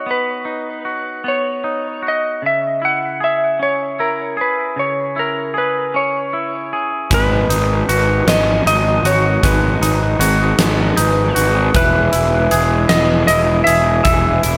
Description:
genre	post-rock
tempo	52 BPM (dotted quarters)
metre	6/8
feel	straight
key	G# minor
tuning	A4 = 442 Hz
part	clean lap steel guitar	melody	0.0-14.6 s	A#4 to F#5	-21 LUFS	equal	analog delay
part	twangy electric guitar	arpeggios	0.0-14.6 s	C#3 to G#4	-23 LUFS	equal	analog delay
part	glassy FM pad	sustained chords	8.1-14.6 s	E3 to B4	-30 LUFS	equal	none
part	vibraphone with medium mallets	arpeggios	7.1-14.6 s	E4 to E5	-26 LUFS	equal	analog delay
part	fuzz picked electric bass	bass	7.1-14.6 s	E1 to G#1	-19 LUFS	equal	overdrive
part	huge arena drum kit	drums	7.1-14.6 s	hi-hat, kick drum, snare drum	-22 LUFS	equal	none
room	moderate concert hall reverb, RT60 2.1 s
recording	none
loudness	-16 LUFS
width	mono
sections	0.0-7.1 A section; 7.1-14.6 B section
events	none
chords	0.0 Badd9; 2.4 C#m; 7.1 G#m7; 11.8 E

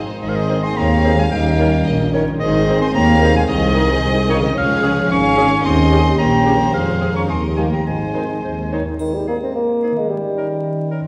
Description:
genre	cinematic, playful, whimsical film cue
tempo	110 BPM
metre	2/4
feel	straight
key	Ab major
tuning	A4 = 444 Hz
part	rich studio violin section	melody	0.0-8.7 s	Bb4 to F5	-31 LUFS	equal	none
part	rich studio viola section	accompaniment	0.0-8.8 s	C4 to C5	-33 LUFS	equal	none
part	concert harp	arpeggios	0.0-11.1 s	Ab2 to Db5	-29 LUFS	equal	none
part	bright oboe	second line	0.2-11.0 s	Ab4 to Db6	-24 LUFS	equal	none
part	clear studio violin section	second line	0.2-8.7 s	F4 to F5	-32 LUFS	equal	none
part	mellow hollow concert flute	second line	0.2-11.0 s	Bb4 to Bb5	-27 LUFS	equal	none
part	dark French horn section	sustained chords	0.2-11.1 s	Eb3 to Bb4	-27 LUFS	equal	none
part	mellow tuba	bass	0.2-8.9 s	F1 to Eb2	-25 LUFS	equal	none
part	rich studio cello section	bass	0.2-8.7 s	Db3 to Db4	-25 LUFS	equal	none
part	rich studio double bass section	bass	0.2-8.9 s	Ab1 to F2	-24 LUFS	equal	none
part	dark clarinet	second line	0.5-11.0 s	Eb4 to Db5	-34 LUFS	equal	none
part	dark bassoon	accompaniment	0.5-10.9 s	C3 to C4	-26 LUFS	equal	none
part	triangle	percussion	9.0-10.1 s	none	-52 LUFS	equal	none
room	wet recital hall reverb, RT60 1.6 s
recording	recorded in a church or concert hall, vinyl crackle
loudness	-17 LUFS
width	mono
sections	0.2-9.0 A section; 9.0-11.1 B section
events	none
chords	0.2 Ab; 1.3 Eb7; 2.4 Ab; 3.5 Ab/C; 4.6 Db; 5.6 Eb7; 6.7 Fm; 7.3 Eb; 7.9 Ab; 10.1 Eb7

